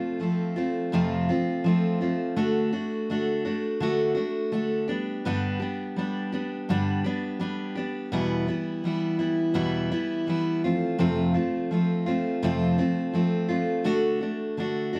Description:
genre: rock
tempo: 84 BPM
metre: 4/4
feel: straight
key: unclear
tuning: A4 = 439 Hz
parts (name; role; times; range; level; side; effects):
- picked steel-string acoustic guitar; solo; 0.0-15.0 s; E2 to G4; -27 LUFS; equal; none
room: moderate studio reverb, RT60 0.9 s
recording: none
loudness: -27 LUFS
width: mono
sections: 0.0-15.0 A section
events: none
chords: 0.0 F; 2.4 D; 4.9 G; 8.1 Em; 10.6 F; 13.9 D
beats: 0.21 0.93 1.65 | 2.37 3.09 3.81 4.53 | 5.25 5.96 6.68 7.40 | 8.12 8.84 9.55 10.27 | 10.99 11.70 12.42 13.14 | 13.85 14.57

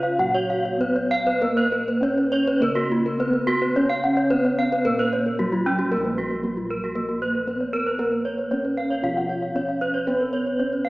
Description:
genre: Balinese gamelan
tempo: 98-116 BPM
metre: 4/4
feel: straight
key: Bb pelog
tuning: A4 = 440 Hz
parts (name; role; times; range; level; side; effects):
- gamelan-type bronze metallophone; melody; 0.0-10.9 s; Gb3 to Gb4; -25 LUFS; equal; none
- gamelan-type bronze metallophone; accompaniment; 0.0-10.9 s; Db3 to Cb4+35c; -33 LUFS; right 1 dB; none
- gamelan-type bronze metallophone; arpeggios; 0.0-10.9 s; F4 to Gb5; -26 LUFS; left 1 dB; none
- gamelan-type bronze metallophone; arpeggios; 0.0-10.9 s; Db4 to F5; -26 LUFS; right 1 dB; none
- gamelan-type bossed gongs; bass; 0.0-10.9 s; Bb1 to Cb5+35c; -30 LUFS; equal; none
room: wet scoring stage reverb, RT60 1.8 s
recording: recorded in a church or concert hall, small speaker sound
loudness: -20 LUFS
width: side -21 dB against mid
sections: 0.0-5.9 A section; 5.9-10.9 B section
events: none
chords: none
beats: 0.19 0.80 | 1.42 2.02 2.61 3.19 | 3.76 4.32 4.86 5.39 | 5.92 6.44 6.96 7.47 | 7.99 8.51 9.03 9.55 | 10.07 10.59

